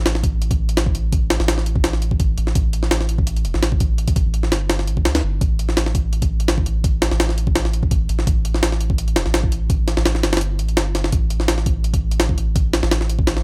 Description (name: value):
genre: drum and bass, jungle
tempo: 168 BPM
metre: 4/4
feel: straight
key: unclear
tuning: A4 = 439 Hz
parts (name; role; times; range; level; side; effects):
- soft dub sub bass; bass; 0.0-13.4 s; E1 to D2; -22 LUFS; equal; none
- jungle sampler-style drum kit; drums; 0.1-13.4 s; hi-hat, kick drum, snare drum; -22 LUFS; equal; studio reverb
room: digital ambience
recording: none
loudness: -19 LUFS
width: mono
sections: 0.0-13.4 A section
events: none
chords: none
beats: 0.06 0.41 0.77 | 1.13 1.48 1.84 2.20 | 2.56 2.91 3.27 3.63 | 3.98 4.34 4.70 5.05 | 5.41 5.77 6.13 6.48 | 6.84 7.20 7.55 7.91 | 8.27 8.63 8.98 9.34 | 9.70 10.05 10.41 10.77 | 11.13 11.48 11.84 12.20 | 12.55 12.91 13.27